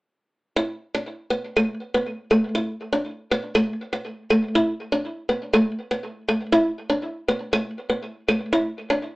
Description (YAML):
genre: highlife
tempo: 121 BPM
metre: 4/4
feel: straight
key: unclear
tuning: A4 = 440 Hz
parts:
  - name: picked steel-string acoustic guitar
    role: solo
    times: 0.6-9.1 s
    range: A3 to E4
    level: -21 LUFS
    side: equal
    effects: tape echo
room: moderate studio ambience, RT60 0.5 s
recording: band playing live in one room, AM radio sound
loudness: -22 LUFS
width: side -21 dB against mid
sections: 0.6-8.5 A section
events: none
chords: none